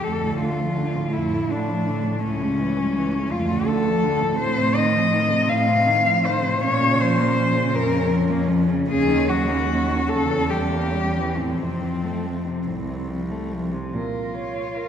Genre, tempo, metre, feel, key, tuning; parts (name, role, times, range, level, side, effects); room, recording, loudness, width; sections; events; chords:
classical, lyrical piece for cello ensemble; 44-57 BPM (dotted quarters); 6/8; rubato; Bb minor from 4.4 s; A4 = 440 Hz
rich cello; melody; 0.0-14.9 s; C4 to F5; -23 LUFS; left 3 dB
warm cello; second line; 0.0-14.9 s; A3 to Db5; -29 LUFS; right 4 dB
rich cello; accompaniment; 0.0-13.9 s; F2 to Bb3; -27 LUFS; left 1 dB
warm cello; bass; 0.0-14.9 s; C2 to Bb2; -25 LUFS; right 2 dB
wet concert hall reverb, RT60 2.3 s; recorded in a church or concert hall; -19 LUFS; side -8 dB against mid
0.0-13.9 A section
0.0 Dm; 2.2 A7/C#; 3.3 Dm; 4.4 F7/A; 6.6 Bbm; 8.9 Ebm7; 10.1 Edim7; 11.4 F; 13.9 Bbm